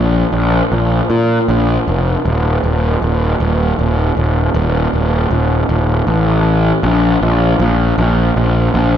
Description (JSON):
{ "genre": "post-rock", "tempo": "52 BPM (dotted quarters)", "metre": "6/8", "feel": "straight", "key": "unclear", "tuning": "A4 = 435 Hz", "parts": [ { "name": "fuzz picked electric bass", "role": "solo", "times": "0.0-9.0 s", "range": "Eb1 to Bb2", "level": "-12 LUFS", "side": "equal", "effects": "overdrive, slapback echo" } ], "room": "wet scoring stage reverb, RT60 1.8 s", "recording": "big arena sound, nothing above 7.6 kHz", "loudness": "-12 LUFS", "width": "side -10 dB against mid", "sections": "0.0-2.2 A section; 2.2-9.0 B section", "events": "build-up 0.0-2.2", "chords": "none" }